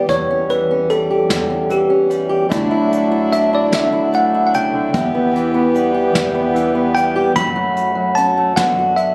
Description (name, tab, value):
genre	acoustic folk duo or small band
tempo	50 BPM (dotted quarters)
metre	6/8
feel	straight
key	E dorian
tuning	A4 = 437 Hz
part	bell-like tine electric piano	melody	0.0-9.1 s	G4 to B5	-19 LUFS	equal	none
part	fingerpicked acoustic archtop guitar	accompaniment	0.0-9.1 s	E2 to G4	-20 LUFS	equal	none
part	upright bass	bass	0.0-9.1 s	D2 to F#2	-28 LUFS	equal	none
part	soft brush drum kit	drums	0.1-9.1 s	hi-hat, kick drum, snare drum	-26 LUFS	equal	none
part	pedal harmonium	sustained chords	2.5-7.3 s	E3 to G4	-22 LUFS	equal	none
room	light reverb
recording	recorded on a phone in the room, club reverb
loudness	-16 LUFS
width	mono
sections	0.0-7.4 A section; 7.4-9.1 B section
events	tine electric piano solo 0.0-7.4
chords	0.1 A7/E; 2.5 Dadd9; 4.9 Em; 7.4 F#m; 8.6 Bm/F#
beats	| 0.09 1.30 | 2.51 3.72 | 4.93 6.14 | 7.36 8.57